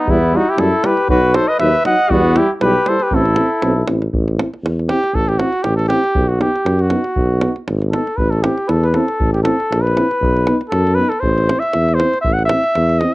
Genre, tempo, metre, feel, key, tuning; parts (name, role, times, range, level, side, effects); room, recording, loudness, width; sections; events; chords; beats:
balkan folk, Balkan brass band; 118 BPM; 2/4; swing 55% on 16ths; A dorian sharp4; A4 = 440 Hz
warm cornet; melody; 0.0-13.1 s; D#4 to F#5; -17 LUFS; equal; cassette tape
warm trumpet; second line; 0.0-3.9 s; B3 to D#5; -20 LUFS; left 1 dB; cassette tape, plate reverb
dark French horn; accompaniment; 0.1-13.1 s; D#4 to E4; -24 LUFS; left 3 dB; cassette tape
mellow euphonium; accompaniment; 0.1-13.1 s; F#3 to C4; -23 LUFS; right 2 dB; cassette tape
mellow tuba; bass; 0.1-13.0 s; G#1 to F#2; -17 LUFS; equal
davul; percussion; 0.1-13.1 s; -23 LUFS; right 1 dB
light reverb; home recording on cassette; -13 LUFS; side -19 dB against mid
0.0-4.1 A section; 4.1-13.1 B section
cornet solo 4.1-13.1
0.1 Em; 1.1 B; 2.1 Em; 3.1 Am; 6.2 B; 8.2 Am; 10.2 B; 11.2 Am
| 0.08 0.59 | 1.09 1.60 | 2.10 2.61 | 3.12 3.62 | 4.13 4.64 | 5.14 5.65 | 6.16 6.67 | 7.17 7.68 | 8.19 8.70 | 9.21 9.71 | 10.22 10.73 | 11.24 11.74 | 12.25 12.76